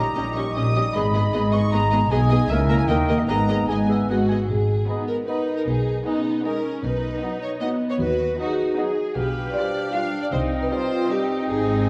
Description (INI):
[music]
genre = cinematic, playful, whimsical film cue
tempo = 154 BPM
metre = 3/4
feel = straight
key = G# minor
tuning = A4 = 440 Hz
[part]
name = rich chamber violin section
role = melody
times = 0.0-11.9 s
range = D#4 to F5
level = -35 LUFS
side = equal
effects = none
[part]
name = mellow hollow silver concert flute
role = second line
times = 0.0-11.9 s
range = D#5 to D#6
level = -32 LUFS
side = equal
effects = none
[part]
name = rich studio violin section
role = second line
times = 0.0-11.9 s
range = G3 to D#6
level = -36 LUFS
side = equal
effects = none
[part]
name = warm clarinet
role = second line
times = 0.0-11.9 s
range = C4 to B4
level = -34 LUFS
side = equal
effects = none
[part]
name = warm oboe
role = second line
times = 0.0-11.9 s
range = D#5 to G#5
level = -35 LUFS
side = equal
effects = none
[part]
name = rich studio viola section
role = accompaniment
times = 0.0-11.9 s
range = A#3 to A#4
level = -31 LUFS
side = equal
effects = none
[part]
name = warm French horn section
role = sustained chords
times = 0.0-11.9 s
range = F#3 to F4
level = -33 LUFS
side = equal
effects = none
[part]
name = warm studio cello section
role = bass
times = 0.0-11.9 s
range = G#2 to D#3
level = -29 LUFS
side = equal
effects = none
[part]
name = warm studio double bass section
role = bass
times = 0.0-11.9 s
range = G#1 to D#2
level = -28 LUFS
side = equal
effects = none
[part]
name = marimba with medium mallets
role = melody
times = 4.1-11.9 s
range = C#4 to F5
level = -29 LUFS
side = equal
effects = none
[sound]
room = wet concert hall reverb, RT60 2.3 s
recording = dark, warm production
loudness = -22 LUFS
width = mono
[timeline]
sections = 0.0-4.5 A section; 4.5-11.9 B section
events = none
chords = 0.0 D#7/A#; 1.0 G#m; 2.1 G#m/B; 2.5 A#m7b5/C#; 2.9 D#; 3.3 G#m; 5.7 G#m/B; 6.8 B; 8.0 B/D#; 9.2 G7/B; 10.3 Cm